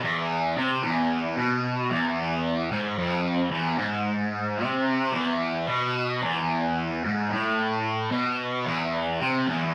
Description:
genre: rock.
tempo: 111 BPM.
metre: 4/4.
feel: straight.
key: unclear.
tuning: A4 = 440 Hz.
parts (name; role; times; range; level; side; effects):
fuzz guitar; solo; 0.0-9.7 s; E2 to C3; -26 LUFS; equal; distortion, phaser.
room: wet studio ambience, RT60 0.5 s.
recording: vinyl crackle.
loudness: -26 LUFS.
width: mono.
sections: 0.0-5.1 A section; 5.1-9.7 B section.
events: none.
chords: none.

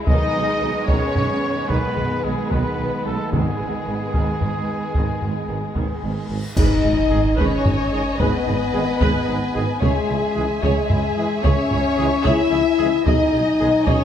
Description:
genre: cinematic, epic orchestral film score.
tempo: 74 BPM (dotted quarters).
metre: 12/8.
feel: straight.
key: G# minor.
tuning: A4 = 442 Hz.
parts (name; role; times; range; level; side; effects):
dark symphonic violin section; second line; 0.0-14.0 s; G#3 to G#5; -30 LUFS; left 4 dB; none.
warm symphonic viola section; accompaniment; 0.0-14.0 s; D#3 to D#5; -29 LUFS; right 3 dB; none.
mellow French horn section; sustained chords; 0.0-14.0 s; G#3 to G#4; -23 LUFS; left 3 dB; none.
dark symphonic violin section; melody; 0.1-14.0 s; G#4 to E5; -27 LUFS; left 4 dB; none.
mellow trombone section; sustained chords; 0.1-13.7 s; D#3 to G#3; -33 LUFS; right 2 dB; none.
clear trumpet; stabs; 0.1-13.7 s; G#4 to D#5; -29 LUFS; right 1 dB; none.
clear symphonic double bass section; bass; 0.1-13.9 s; G#1 to C#2; -28 LUFS; right 3 dB; none.
dark symphonic cello section; bass; 0.1-13.9 s; G#2 to D#4; -30 LUFS; right 2 dB; none.
mellow tuba; bass; 0.1-14.0 s; G#1 to C#2; -29 LUFS; right 4 dB; none.
taiko ensemble; drums; 0.1-14.0 s; none; -23 LUFS; equal; none.
cymbal swell, clash cymbals and concert bass drum; percussion; 3.3-7.6 s; none; -25 LUFS; equal; none.
timpani; percussion; 3.3-4.1 s; G#2; -29 LUFS; left 2 dB; none.
reverse cymbal and impact; sound effects; 6.3-9.8 s; none; -33 LUFS; equal; none.
room: moderate scoring stage reverb, RT60 1.9 s.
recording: none.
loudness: -18 LUFS.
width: side -9 dB against mid.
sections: 0.0-6.6 A section; 6.6-14.0 A section.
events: reverse cymbal 6.3-6.6; band accent 6.6-7.1; impact 6.6-9.8.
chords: 0.1 G#m/B; 3.3 G#m; 9.8 C#m; 13.1 G#m/B.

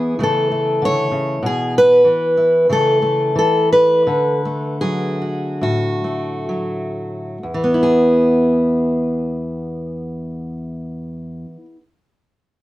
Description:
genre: folk, solo fingerstyle acoustic guitar.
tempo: 60-97 BPM.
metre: 4/4.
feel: rubato.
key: E mixolydian.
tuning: A4 = 436 Hz.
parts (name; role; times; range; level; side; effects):
fingerpicked steel-string acoustic guitar; solo; 0.0-11.8 s; E2 to C#5; -15 LUFS; equal; none.
room: light reverb.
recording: none.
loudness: -14 LUFS.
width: side -16 dB against mid.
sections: 0.0-7.4 A section; 7.4-11.3 B section.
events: slowing down 1.4-7.4.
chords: 0.2 A/C#; 1.4 E5/B; 2.7 A/C#; 4.1 D; 7.4 E.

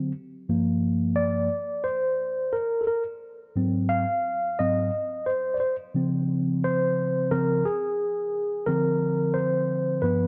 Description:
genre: hip hop.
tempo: 88 BPM.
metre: 4/4.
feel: swing 62% on 16ths.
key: unclear.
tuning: A4 = 436 Hz.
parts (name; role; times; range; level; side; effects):
mellow tine electric piano; solo; 0.0-10.3 s; G2 to F5; -26 LUFS; equal; none.
room: moderate plate reverb, RT60 3.2 s.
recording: dark, warm production, nothing above 7.7 kHz.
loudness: -26 LUFS.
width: mono.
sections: 0.0-10.3 A section.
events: tine electric piano solo 0.0-10.3.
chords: 0.5 Gm7; 3.2 Ab6; 5.9 Dbmaj7; 8.7 Bbadd9/D.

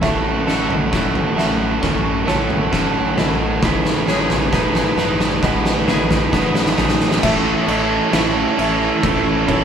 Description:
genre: post-rock.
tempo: 67 BPM.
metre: 4/4.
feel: straight.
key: unclear.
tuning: A4 = 441 Hz.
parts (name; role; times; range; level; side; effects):
rich studio string section; sustained chords; 0.0-9.6 s; E3 to G#5; -30 LUFS; left 1 dB; none.
felt-muted upright piano; arpeggios; 0.0-9.6 s; B4 to E5; -29 LUFS; equal; none.
twangy electric guitar; arpeggios; 0.0-9.6 s; A2 to A4; -28 LUFS; left 5 dB; none.
distorted electric guitar; riff; 0.0-9.6 s; A3 to B4; -18 LUFS; right 2 dB; distortion.
fuzz fingered electric bass; bass; 0.0-9.6 s; A1; -25 LUFS; equal; overdrive.
oversized low-tuned drum kit; drums; 0.0-9.6 s; crash cymbal, kick drum, snare drum, toms; -20 LUFS; equal; none.
room: moderate studio reverb, RT60 0.6 s.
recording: band playing live in one room.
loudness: -15 LUFS.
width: side -8 dB against mid.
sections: 0.0-7.2 A section; 7.2-9.6 B section.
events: build-up 0.0-7.2; drum fill 0.0-7.2.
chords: 0.0 F#m7/A; 3.6 G#m/A; 7.2 F#m7/A (rootless).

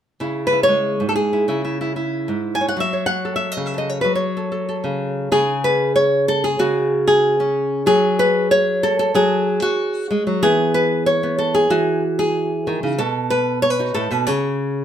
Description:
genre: flamenco.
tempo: 188 BPM.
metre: 4/4.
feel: straight.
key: C# minor.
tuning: A4 = 440 Hz.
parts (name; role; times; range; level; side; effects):
flamenco guitar; solo; 0.2-14.8 s; G#2 to G#5; -16 LUFS; equal; none.
room: moderate studio reverb, RT60 0.7 s.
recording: band playing live in one room.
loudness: -16 LUFS.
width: side -9 dB against mid.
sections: 0.2-5.3 A section; 5.3-14.8 B section.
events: none.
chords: 0.2 C#m; 2.8 F#m; 5.3 N.C.; 7.9 F#madd9; 10.4 Eadd9; 13.0 B; 14.3 N.C..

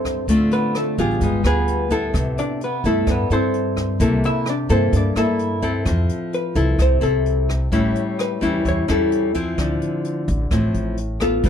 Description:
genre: bossa nova.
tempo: 129 BPM.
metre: 4/4.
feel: straight.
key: C major.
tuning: A4 = 437 Hz.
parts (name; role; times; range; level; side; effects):
vintage hollow-body jazz guitar; melody; 0.0-11.5 s; G3 to E5; -22 LUFS; left 1 dB; none.
nylon-string guitar; accompaniment; 0.0-11.5 s; G2 to A4; -21 LUFS; left 1 dB; none.
upright bass; bass; 0.0-11.5 s; G1 to G2; -22 LUFS; equal; none.
jazz brush drum kit; drums; 0.0-11.5 s; hi-hat, kick drum, rim click; -27 LUFS; equal; none.
room: little or no reverb.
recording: dark, warm production.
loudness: -17 LUFS.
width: side -8 dB against mid.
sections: 0.0-2.1 A section; 2.1-11.5 A section.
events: hollow-body jazz guitar solo 0.0-11.5.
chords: 0.3 Dm7; 1.2 G7b9; 2.1 Cmaj13; 4.0 C13; 5.9 Fmaj7; 7.7 A7; 9.6 Dm9.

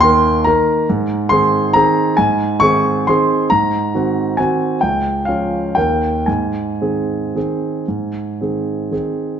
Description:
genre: classical, piano waltz.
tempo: 108-147 BPM.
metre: 3/4.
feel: rubato.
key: Ab major.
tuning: A4 = 442 Hz.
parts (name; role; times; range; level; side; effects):
warm concert grand piano; solo; 0.0-9.4 s; Db2 to Db6; -14 LUFS; right 1 dB; none.
room: wet recital hall reverb, RT60 1.4 s.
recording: nothing above 7.6 kHz.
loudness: -14 LUFS.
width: side -8 dB against mid.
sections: 0.0-9.4 A section.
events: none.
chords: 0.0 Eb; 0.9 Ab; 3.5 Ab7; 4.8 Db; 5.8 Eb; 6.3 Ab.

